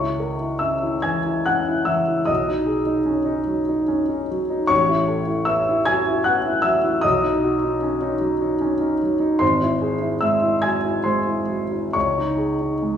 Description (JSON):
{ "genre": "classical, impressionist solo piano", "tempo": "65-78 BPM", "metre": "3/4", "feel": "rubato", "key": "C# minor", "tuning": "A4 = 440 Hz", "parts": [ { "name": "warm concert grand piano", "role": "solo", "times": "0.0-13.0 s", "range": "G#1 to G#6", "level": "-18 LUFS", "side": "equal", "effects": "none" } ], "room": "wet recital hall reverb, RT60 1.4 s", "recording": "recorded in a church or concert hall, studio reverb", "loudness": "-18 LUFS", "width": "side -8 dB against mid", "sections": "0.0-13.0 A section", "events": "none", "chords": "0.0 C#m6; 2.3 B69; 4.7 A69; 7.0 Badd9; 9.4 G#aug7; 11.9 C#sus2", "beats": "0.64 1.48 | 2.29 3.08 3.90 | 4.70 5.48 6.26 | 7.03 7.82 8.62 | 9.42 10.23 11.06 | 11.95 12.85" }